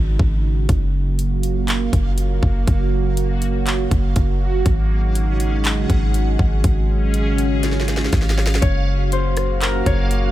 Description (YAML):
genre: hip hop, atmospheric cloud-rap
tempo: 121 BPM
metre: 4/4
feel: half-time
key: Gb major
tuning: A4 = 442 Hz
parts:
  - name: dark analog pad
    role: sustained chords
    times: 0.0-10.3 s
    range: Db3 to F5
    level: -24 LUFS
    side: right 3 dB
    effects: chorus, sidechain pumping
  - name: warm 808-style bass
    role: bass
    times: 0.0-10.3 s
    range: Gb1 to Ab1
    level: -19 LUFS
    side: equal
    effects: none
  - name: trap drum kit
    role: drums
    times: 0.2-10.2 s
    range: handclaps, hi-hat, kick drum, rim click, snare drum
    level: -21 LUFS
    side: equal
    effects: none
  - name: backwards swelling texture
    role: texture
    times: 1.4-10.3 s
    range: Bb3 to Gb5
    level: -31 LUFS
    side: left 1 dB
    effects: built-in reverb
  - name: concert harp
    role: melody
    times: 8.6-10.3 s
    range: Bb4 to Db5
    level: -24 LUFS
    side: left 6 dB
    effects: low-pass filter, digital delay
room: little or no reverb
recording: none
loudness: -16 LUFS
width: side -14 dB against mid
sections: 0.0-8.6 A section; 8.6-10.3 B section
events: break 0.0-0.7; drum fill 7.6-8.6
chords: 0.0 Ab7sus4; 0.7 Gbmaj7; 4.7 Ab7sus4; 8.6 Gbmaj7